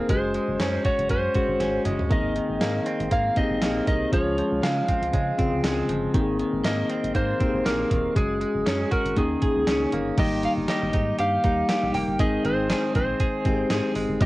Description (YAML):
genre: 1980s-style pop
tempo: 119 BPM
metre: 4/4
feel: swing 55% on 16ths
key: Ab major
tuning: A4 = 440 Hz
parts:
  - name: lightly driven lead guitar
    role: melody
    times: 0.0-14.3 s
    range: Ab4 to G5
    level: -27 LUFS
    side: equal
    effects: none
  - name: mellow tine electric piano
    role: accompaniment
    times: 0.0-14.3 s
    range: Db3 to Ab4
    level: -26 LUFS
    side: left 2 dB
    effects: cassette tape
  - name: direct-recorded clean electric guitar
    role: riff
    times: 0.0-14.3 s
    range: Eb3 to Ab4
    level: -30 LUFS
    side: right 3 dB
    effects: wide subtle chorus, cassette tape
  - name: solid FM bass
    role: bass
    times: 0.0-14.3 s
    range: Eb1 to Db3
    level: -31 LUFS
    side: equal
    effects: none
  - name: gated 80s digital drum machine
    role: drums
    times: 0.1-14.3 s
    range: crash cymbal, hi-hat, kick drum, snare drum, toms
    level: -26 LUFS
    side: right 1 dB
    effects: gated reverb, gated reverb snare, cassette tape
room: moderate booth ambience, RT60 0.2 s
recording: home recording on cassette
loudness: -21 LUFS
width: side -18 dB against mid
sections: 0.0-10.2 A section; 10.2-14.3 B section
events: drum fill 1.6-2.1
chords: 0.1 Gbsus2; 2.1 Abadd9; 4.1 Dbmaj7; 6.1 Abadd9; 8.2 Gbsus2; 9.2 Eb7sus4; 10.2 Eb; 12.2 Ab